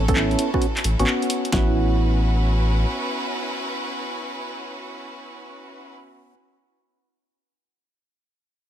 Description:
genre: UK garage, two-step garage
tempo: 132 BPM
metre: 4/4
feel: swing 67% on 16ths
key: A major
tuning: A4 = 438 Hz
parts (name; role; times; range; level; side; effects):
- bright studio violin section; sustained chords; 0.0-5.9 s; C#4 to B4; -30 LUFS; right 1 dB; sidechain pumping
- percussive organ stab; stabs; 0.0-6.3 s; B3 to A4; -26 LUFS; equal; chorus, digital delay
- saturated sub bass; bass; 0.0-2.8 s; A1; -20 LUFS; equal; none
- punchy analog drum machine; drums; 0.1-1.7 s; kick drum, snare drum; -23 LUFS; equal; none
- punchy analog drum machine; drums; 0.1-1.5 s; handclaps, hi-hat, rim click; -26 LUFS; equal; none
- nylon-string guitar; melody; 0.2-6.3 s; C#4 to E4; -31 LUFS; right 5 dB; dub echo
room: little or no reverb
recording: none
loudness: -20 LUFS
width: side -10 dB against mid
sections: 0.0-1.5 A section; 1.5-5.2 B section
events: drop 0.0-1.5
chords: 0.0 A69

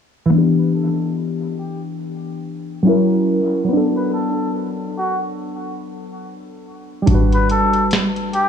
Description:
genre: lo-fi hip hop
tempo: 71 BPM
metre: 4/4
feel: swing 60% on 16ths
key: E minor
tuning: A4 = 444 Hz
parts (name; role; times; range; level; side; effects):
- warm analog keys; accompaniment; 0.3-8.5 s; E3 to B4; -18 LUFS; left 1 dB; chorus, cassette tape, low-pass filter, dub echo
- trumpet with straight mute; melody; 0.6-8.5 s; F#4 to B4; -23 LUFS; left 1 dB; low-pass filter, dub echo
- booming analog drum machine; drums; 7.1-8.5 s; hi-hat, kick drum, snare drum; -17 LUFS; equal; none
room: light reverb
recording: echo-heavy mix, cassette tape, studio reverb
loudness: -16 LUFS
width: side -7 dB against mid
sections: 0.3-8.5 A section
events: filter sweep 0.3-8.5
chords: 0.3 Em7; 2.9 F#7; 3.7 Bm7/F#; 7.1 Gmaj7

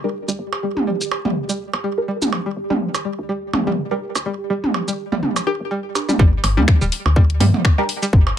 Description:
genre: minimal techno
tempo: 124 BPM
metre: 4/4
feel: swing 56% on 16ths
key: G minor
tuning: A4 = 445 Hz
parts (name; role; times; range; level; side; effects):
- string-like resonator pluck; riff; 0.0-8.1 s; G3 to G4; -25 LUFS; equal; chorus, sidechain pumping, digital delay
- filtered dub chord stab; stabs; 0.0-7.8 s; D4 to Bb4; -25 LUFS; right 2 dB; phaser, wide subtle chorus, digital delay
- woody FM bass; bass; 0.0-8.3 s; D1 to G2; -20 LUFS; left 1 dB; tube saturation, sidechain pumping, high-pass filter
- pulsing gated texture; texture; 0.0-6.2 s; G4; -30 LUFS; right 4 dB; chorus, built-in reverb, sidechain pumping
- garage drum kit; drums; 0.3-8.1 s; finger snaps, hi-hat, shaker; -24 LUFS; left 1 dB; small room ambience
- electronic percussion blips and toms; percussion; 0.5-8.4 s; none; -21 LUFS; right 2 dB; small room ambience
- electronic kick drum; drums; 6.2-8.2 s; none; -13 LUFS; left 1 dB; small room ambience
room: light reverb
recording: none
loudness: -17 LUFS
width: side -10 dB against mid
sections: 0.0-6.2 A section; 6.2-8.4 B section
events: filter sweep on synth pluck 0.0-6.2; drop 6.2-8.4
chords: 0.0 G5

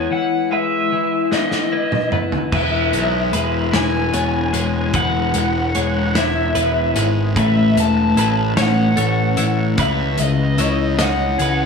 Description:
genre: post-rock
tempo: 50 BPM (dotted quarters)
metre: 6/8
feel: straight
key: E major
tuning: A4 = 439 Hz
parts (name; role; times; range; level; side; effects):
- overdriven slide guitar; melody; 0.0-11.7 s; D#5 to A5; -22 LUFS; left 1 dB; slapback echo
- warbly tape-like pad; sustained chords; 0.0-11.7 s; E3 to C#5; -25 LUFS; left 3 dB; chorus, built-in reverb
- twelve-string electric guitar; arpeggios; 0.0-11.7 s; C#3 to D#5; -23 LUFS; left 5 dB; harmonic tremolo, slapback echo
- twelve-string electric guitar; arpeggios; 0.0-11.7 s; B4 to C#5; -28 LUFS; right 3 dB; wide subtle chorus, slapback echo
- fuzz picked electric bass; bass; 0.0-11.7 s; E1 to C#2; -20 LUFS; equal; overdrive
- loose indie drum kit; drums; 1.3-11.6 s; crash cymbal, hi-hat, kick drum, snare drum, toms; -22 LUFS; equal; none
room: light reverb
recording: none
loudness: -15 LUFS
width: side -5 dB against mid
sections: 0.0-2.5 A section; 2.5-11.7 B section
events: drum fill 1.3-2.5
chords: 0.0 E; 7.4 Aadd9; 9.8 C#madd9

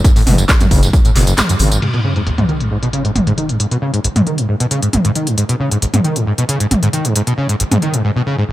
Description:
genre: driving peak-time techno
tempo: 135 BPM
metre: 4/4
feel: straight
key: G# phrygian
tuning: A4 = 441 Hz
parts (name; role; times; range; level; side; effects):
- overdriven acid bass; riff; 0.0-8.5 s; F#1 to D#3; -15 LUFS; equal; distortion, ensemble chorus, sidechain pumping, dub echo
- electronic kick drum; drums; 0.0-1.0 s; none; -11 LUFS; equal; none
- gated 80s drum kit; drums; 0.0-1.7 s; hi-hat, snare drum; -26 LUFS; right 1 dB; high-pass filter on hats, high-pass filter on snare, high-pass filter on room
- techno drum kit; drums; 0.0-8.0 s; crash cymbal, handclaps, hi-hat, tambourine, toms; -18 LUFS; equal; low-pass filter on snare, low-pass filter on hats, low-pass filter on toms, low-pass filter on perc, low-pass filter on cymbals, low-pass filter on room
- growling FM bass; bass; 0.3-1.8 s; F#1 to G#1; -14 LUFS; equal; sidechain pumping
- sub drop; sound effects; 1.8-3.6 s; none; -23 LUFS; equal; none
room: light reverb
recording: none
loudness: -12 LUFS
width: side -15 dB against mid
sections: 0.0-1.8 A section; 1.8-8.5 B section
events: drop 0.0-1.8; kick drops out 1.4-1.8; band accent 1.4; impact 1.8-3.6; filter sweep on drum 1.8-8.5; filter sweep on acid bass 1.8-8.5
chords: 0.0 F#5; 1.8 G#5

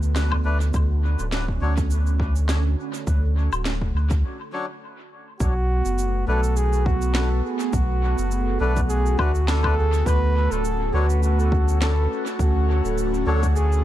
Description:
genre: ambient dub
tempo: 103 BPM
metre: 4/4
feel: swing 56% on 16ths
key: B minor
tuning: A4 = 440 Hz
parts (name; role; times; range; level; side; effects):
- airy breathy pad; sustained chords; 0.0-13.8 s; D3 to A4; -30 LUFS; right 2 dB; chorus, phaser, vintage 12-bit sampler grit
- warm sub bass; bass; 0.0-13.8 s; D1 to D2; -21 LUFS; equal; tube saturation
- electronic shaker, snare drum and woodblock; drums; 0.0-13.8 s; none; -32 LUFS; left 1 dB; dub echo
- electronic kick drum; drums; 0.3-13.5 s; none; -26 LUFS; equal; overdrive
- melodica; stabs; 0.4-13.5 s; F#3 to C#5; -33 LUFS; left 3 dB; dub echo
- trumpet with bucket mute; melody; 5.4-13.8 s; F#4 to B4; -27 LUFS; equal; dub echo
room: little or no reverb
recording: echo-heavy mix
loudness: -19 LUFS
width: side -13 dB against mid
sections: 0.0-5.4 A section; 5.4-13.8 B section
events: break 4.2-5.4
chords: 0.0 Bm7; 0.7 Dmaj7; 5.4 Bm7; 10.1 Dmaj7

